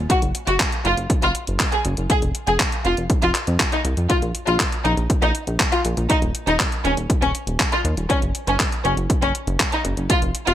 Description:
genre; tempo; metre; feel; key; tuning
italo disco; 120 BPM; 4/4; straight; unclear; A4 = 440 Hz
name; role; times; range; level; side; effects
chorused synth bass; bass; 0.0-10.5 s; Eb1 to F2; -23 LUFS; equal; tube saturation
rich symphonic violin section; melody; 0.1-10.5 s; Db4 to Ab4; -22 LUFS; left 1 dB; tape echo
electronic kick drum; drums; 0.1-10.2 s; none; -22 LUFS; equal; none
gated 80s digital drum machine; drums; 0.1-10.5 s; handclaps, hi-hat; -24 LUFS; equal; gated reverb
room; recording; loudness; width
light reverb; none; -18 LUFS; side -11 dB against mid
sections
0.0-10.5 A section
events
none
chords
0.1 N.C.; 8.1 Gb5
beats
| 0.10 0.60 1.10 1.60 | 2.10 2.60 3.10 3.60 | 4.10 4.60 5.10 5.60 | 6.10 6.60 7.10 7.60 | 8.10 8.60 9.10 9.60 | 10.10

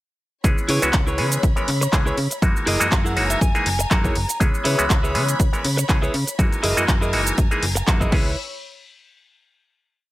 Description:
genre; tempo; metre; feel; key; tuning
filtered disco house; 121 BPM; 4/4; swing 55% on 16ths; C# dorian; A4 = 439 Hz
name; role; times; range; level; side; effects
auto-wah clav; accompaniment; 0.4-8.3 s; E3 to D#5; -24 LUFS; equal; phaser, vintage 12-bit sampler grit, sidechain pumping
rich chamber string section; sustained chords; 0.4-8.4 s; C#5 to E6; -31 LUFS; left 2 dB; sidechain pumping
slap-like FM bass; bass; 0.4-8.4 s; F#1 to C#3; -24 LUFS; equal; tube saturation, sidechain pumping
electronic kick drum; drums; 0.4-8.2 s; none; -19 LUFS; equal; none
punchy analog drum machine; drums; 0.4-8.2 s; crash cymbal, handclaps, hi-hat, shaker; -26 LUFS; equal; sidechain pumping on hats, sidechain pumping on perc, sidechain pumping on cymbals
clean electric guitar; riff; 0.7-8.4 s; E4 to A#5; -25 LUFS; right 1 dB; sidechain pumping
room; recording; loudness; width
digital ambience; none; -17 LUFS; side -17 dB against mid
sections
0.4-8.4 drop; 8.4-10.1 final hit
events
drop 0.4-8.4; clean electric guitar fill 2.9-4.4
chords
0.4 C#m7; 2.4 F#13; 4.4 C#m7; 6.4 F#13; 8.1 C#m7; 8.4 N.C.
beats
| 0.44 0.93 1.43 1.93 | 2.42 2.92 3.41 3.91 | 4.41 4.90 5.40 5.89 | 6.39 6.88 7.38 7.88

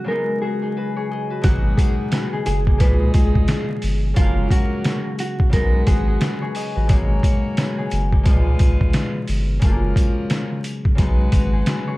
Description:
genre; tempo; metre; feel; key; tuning
hip hop, boom-bap hip-hop; 88 BPM; 4/4; swing 60% on 16ths; unclear; A4 = 440 Hz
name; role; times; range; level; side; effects
mellow electric guitar; melody; 0.0-6.9 s; E#4 to B4; -27 LUFS; right 1 dB; spring reverb, high-pass filter, low-pass filter, plate reverb, tape echo
concert harp; accompaniment; 0.0-12.0 s; A#2 to E#5; -24 LUFS; left 2 dB; cassette tape, high-pass filter, low-pass filter
bright saxophone section; stabs; 1.4-12.0 s; D#3 to C#5; -32 LUFS; equal; high-pass filter, low-pass filter, plate reverb, tape echo
saturated sub bass; bass; 1.4-11.6 s; F#1 to C#2; -20 LUFS; equal; none
trip hop sampler-style drum kit; drums; 1.4-11.9 s; hi-hat, kick drum, snare drum; -19 LUFS; equal; none
sleigh bells; percussion; 1.4-11.9 s; none; -41 LUFS; left 2 dB; none
room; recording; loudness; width
light reverb; dark, warm production, vinyl crackle; -17 LUFS; side -19 dB against mid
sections
0.0-12.0 A section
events
none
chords
0.1 B69; 1.4 G#m9; 2.8 C#13; 4.2 F#maj9; 5.5 B69; 6.9 G#m9; 8.3 C#13; 9.6 F#maj9; 11.0 B69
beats
0.08 0.76 | 1.44 2.12 2.81 3.49 | 4.17 4.85 5.53 6.21 | 6.90 7.58 8.26 8.94 | 9.62 10.30 10.99 11.67

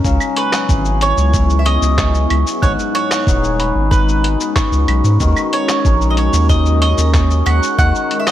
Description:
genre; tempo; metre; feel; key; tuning
folktronica; 93 BPM; 4/4; straight; C# dorian; A4 = 441 Hz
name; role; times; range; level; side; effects
warbly tape-like pad; sustained chords; 0.0-8.3 s; F#3 to A#5; -23 LUFS; left 1 dB; chorus, built-in reverb
hammered dulcimer; arpeggios; 0.0-8.3 s; G#2 to A#4; -22 LUFS; left 5 dB; vintage 12-bit sampler grit
round analog bass; bass; 0.0-7.9 s; D#1 to G#2; -15 LUFS; equal; none
electronic kick drum; drums; 0.0-7.9 s; none; -16 LUFS; equal; none
lo-fi sampler-style drum kit; drums; 0.0-8.3 s; cabasa, claves, handclaps, hi-hat; -22 LUFS; left 1 dB; none
mandolin; melody; 0.4-8.3 s; B4 to F#5; -20 LUFS; right 3 dB; digital delay
glockenspiel with rubber mallets; second line; 0.4-8.1 s; B5 to F#6; -24 LUFS; right 4 dB; ping-pong delay
room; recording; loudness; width
studio ambience; none; -12 LUFS; side -12 dB against mid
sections
0.0-8.3 A section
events
none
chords
0.0 C#m; 2.6 G#m7; 5.2 D#m7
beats
| 0.05 0.69 1.34 1.98 | 2.63 3.27 3.92 4.56 | 5.21 5.85 6.50 7.14 | 7.79

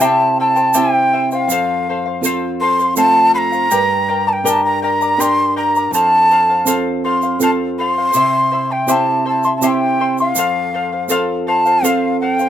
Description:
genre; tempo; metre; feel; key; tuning
andean folk, Andean ensemble; 81 BPM; 3/4; straight; unclear; A4 = 443 Hz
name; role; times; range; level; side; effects
breathy large quena; melody; 0.0-12.5 s; F5 to C6; -14 LUFS; equal; none
charango; accompaniment; 0.0-12.5 s; E4 to C6; -20 LUFS; left 3 dB; none
nylon-string guitar; accompaniment; 0.0-12.5 s; F2 to Bb4; -20 LUFS; right 3 dB; none
egg shaker; percussion; 0.0-12.5 s; none; -23 LUFS; right 7 dB; none
room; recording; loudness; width
light reverb; minimal, uncompressed stereo recording; -13 LUFS; side -10 dB against mid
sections
0.0-12.5 A section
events
none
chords
0.0 C; 1.5 F; 3.7 Gm; 5.9 F; 8.1 C; 10.4 F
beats
0.00 0.75 | 1.49 2.23 2.97 | 3.71 4.45 5.19 | 5.93 6.67 7.41 | 8.15 8.88 9.62 | 10.35 11.09 11.82

